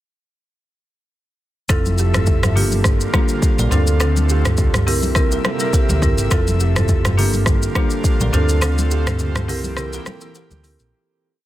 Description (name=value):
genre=afrobeats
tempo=104 BPM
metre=4/4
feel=swing 55% on 16ths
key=F major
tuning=A4 = 441 Hz
part: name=marimba with medium mallets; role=accompaniment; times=1.7-10.9 s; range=Bb3 to Bb4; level=-24 LUFS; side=left 1 dB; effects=none
part: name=airy breathy pad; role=sustained chords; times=1.9-10.9 s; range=C3 to E5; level=-27 LUFS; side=left 1 dB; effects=chorus, tremolo
part: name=kalimba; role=riff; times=1.7-10.6 s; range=E4 to D5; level=-26 LUFS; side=right 8 dB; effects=tape echo
part: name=hollow-body short-scale fingered electric bass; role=bass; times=1.7-10.9 s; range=F1 to D2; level=-18 LUFS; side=equal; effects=none
part: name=afro-pop drum kit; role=drums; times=1.7-10.9 s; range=hi-hat, kick drum, rim click, shaker, toms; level=-18 LUFS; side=equal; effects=none
part: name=congas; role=percussion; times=1.7-10.6 s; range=none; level=-29 LUFS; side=left 2 dB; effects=none
room=digital ambience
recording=dense, heavily limited modern master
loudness=-15 LUFS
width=side -14 dB against mid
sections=1.7-10.9 chorus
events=fade-out 8.6-10.9; break 9.8-10.9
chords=1.7 Fmaj7; 2.6 Gm7; 3.7 Dm7; 4.9 C7; 6.3 Fmaj7; 7.2 Gm7; 8.3 Dm7; 9.5 C7